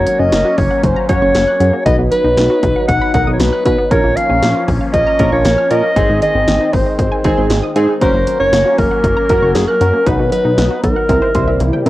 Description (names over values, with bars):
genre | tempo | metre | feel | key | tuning
synth-pop | 117 BPM | 4/4 | straight | unclear | A4 = 440 Hz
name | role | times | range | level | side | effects
breathy clarinet | melody | 0.0-11.8 s | Ab4 to F#5 | -15 LUFS | equal | cassette tape
warm analog keys | accompaniment | 0.0-11.9 s | C4 to Db5 | -19 LUFS | right 1 dB | chorus, cassette tape
phased analog pad | sustained chords | 0.0-11.9 s | C3 to E4 | -22 LUFS | left 1 dB | phaser, chorus, cassette tape
chorused synth bass | bass | 0.0-11.9 s | Gb1 to C3 | -17 LUFS | equal | none
wide unison pluck | arpeggios | 0.1-11.9 s | Eb3 to Gb6 | -24 LUFS | equal | cassette tape, tape echo
punchy analog drum machine | drums | 0.1-11.9 s | hi-hat, kick drum, snare drum, toms | -18 LUFS | equal | overdrive, cassette tape
room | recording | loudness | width
moderate small room reverb, RT60 0.5 s | home recording on cassette | -11 LUFS | side -16 dB against mid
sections
0.0-11.9 A section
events
drum fill 11.6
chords
0.0 Gb; 1.9 B; 3.9 Bbm; 6.0 Ab; 8.0 Gb; 10.1 B; 11.1 C7